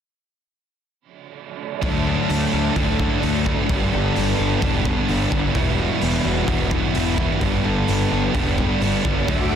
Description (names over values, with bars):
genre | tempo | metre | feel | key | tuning
rock, shoegaze and dream pop | 129 BPM | 4/4 | straight | unclear | A4 = 440 Hz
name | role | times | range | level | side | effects
picked twelve-string acoustic guitar | arpeggios | 1.8-9.6 s | F#3 to A4 | -30 LUFS | left 9 dB | lush chorus, slapback echo
overdriven electric guitar | riff | 1.8-9.6 s | G2 to E4 | -23 LUFS | right 11 dB | reverse reverb
thick fuzz guitar | riff | 1.8-9.6 s | E2 to D4 | -24 LUFS | left 9 dB | distortion, lush chorus
fuzz picked electric bass | bass | 1.8-9.6 s | E1 to D2 | -24 LUFS | equal | overdrive
raw garage drum kit | drums | 1.8-9.4 s | hi-hat, kick drum | -25 LUFS | equal | none
string machine, full ensemble | sustained chords | 9.3-9.6 s | F#4 to D6 | -26 LUFS | left 2 dB | phaser, ensemble chorus
room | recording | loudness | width
light reverb, small room ambience | dense, heavily limited modern master | -18 LUFS | side -8 dB against mid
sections
1.8-9.6 A section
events
none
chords
1.8 Dadd9; 3.7 Gadd9; 5.6 Emadd9; 7.4 Gadd9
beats
| 1.83 2.29 2.76 3.23 | 3.69 4.16 4.62 5.09 | 5.56 6.02 6.49 6.96 | 7.42 7.89 8.35 8.82 | 9.29